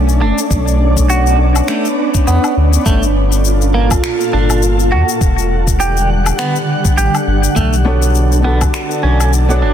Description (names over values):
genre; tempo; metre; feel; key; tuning
sunset chillout; 102 BPM; 4/4; swing 57% on 16ths; B minor; A4 = 443 Hz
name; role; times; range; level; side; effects
shimmering ambient pad; sustained chords; 0.0-9.7 s; Bb2 to F#5; -17 LUFS; equal; chorus, built-in reverb
warm sub bass; bass; 0.0-9.7 s; E1 to E2; -13 LUFS; equal; none
electronic shaker, woodblock and finger snaps; drums; 0.1-9.6 s; none; -22 LUFS; left 6 dB; soft clipping on snare
clean electric guitar; arpeggios; 0.2-9.7 s; A3 to G4; -20 LUFS; right 2 dB; analog chorus, ping-pong delay
electronic kick drum; drums; 0.5-8.7 s; none; -15 LUFS; equal; none
nylon-string guitar; accompaniment; 7.8-9.7 s; D3 to C#5; -18 LUFS; right 1 dB; auto-pan, ping-pong delay
room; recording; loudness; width
light reverb, digital ambience; dense, heavily limited modern master; -11 LUFS; side -9 dB against mid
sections
0.0-9.7 A section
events
none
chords
0.0 Bm9; 2.9 Gm9; 4.9 Em9; 7.6 Bm9